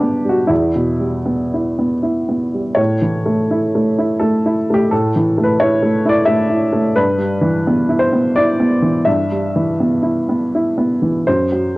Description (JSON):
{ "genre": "neoclassical minimalist piano", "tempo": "77-88 BPM", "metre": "3/4", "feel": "rubato", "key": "unclear", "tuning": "A4 = 440 Hz", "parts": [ { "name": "warm upright piano", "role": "solo", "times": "0.0-11.8 s", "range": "E2 to E5", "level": "-14 LUFS", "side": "equal", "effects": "none" } ], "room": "moderate booth ambience, RT60 0.2 s", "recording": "home recording on cassette", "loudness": "-14 LUFS", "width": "side -21 dB against mid", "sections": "0.0-2.8 A section; 2.8-11.8 A section", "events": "none", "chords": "0.5 Em; 2.8 A; 7.0 Em/G; 11.3 F#(b5, no3)", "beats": "| 0.50 1.27 2.03 | 2.79 3.50 4.20 | 4.91 5.60 6.28 | 6.97 7.65 8.35 | 9.06 9.79 10.52 | 11.27" }